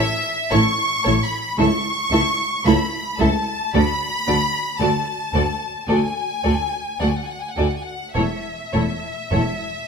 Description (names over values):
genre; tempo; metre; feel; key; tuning
classical, slow romantic movement for string orchestra; 51-57 BPM; 4/4; rubato; A major; A4 = 440 Hz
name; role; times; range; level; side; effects
bright symphonic violin section; melody; 0.0-9.9 s; E5 to C#6; -23 LUFS; left 1 dB; none
rich symphonic violin section; second line; 0.0-9.4 s; A4 to E5; -27 LUFS; left 2 dB; none
dark symphonic viola section; accompaniment; 0.0-9.4 s; A3 to F#4; -23 LUFS; equal; none
clear symphonic cello section; bass; 0.0-9.4 s; C#2 to A2; -25 LUFS; right 2 dB; none
rich studio double bass section; bass; 0.0-9.4 s; E1 to D2; -25 LUFS; right 2 dB; none
room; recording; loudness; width
moderate recital hall reverb, RT60 1.4 s; minimal, uncompressed stereo recording; -18 LUFS; side -6 dB against mid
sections
0.0-9.9 A section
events
none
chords
0.0 A; 1.6 A/C#; 3.7 D; 8.2 A5